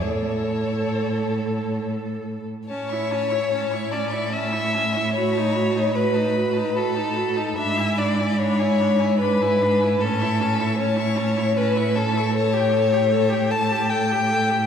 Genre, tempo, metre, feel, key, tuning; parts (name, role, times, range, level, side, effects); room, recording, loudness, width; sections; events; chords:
classical, slow romantic movement for string quartet; 66-78 BPM; 3/4; rubato; A major; A4 = 441 Hz
warm violin; melody; 0.0-14.7 s; C#5 to C#6; -32 LUFS; left 5 dB
warm violin; second line; 0.0-14.7 s; A4 to A5; -23 LUFS; left 3 dB
clear viola; accompaniment; 0.0-14.7 s; C#4 to A4; -28 LUFS; right 2 dB
warm cello; bass; 0.0-14.7 s; G#2 to A2; -24 LUFS; right 2 dB
wet concert hall reverb, RT60 2.3 s; heard from further back in the room; -19 LUFS; side -8 dB against mid
0.0-2.7 A section; 2.7-14.7 B section
0.0 A; 5.1 B7/A; 7.6 E7/G#; 10.0 A; 12.4 A7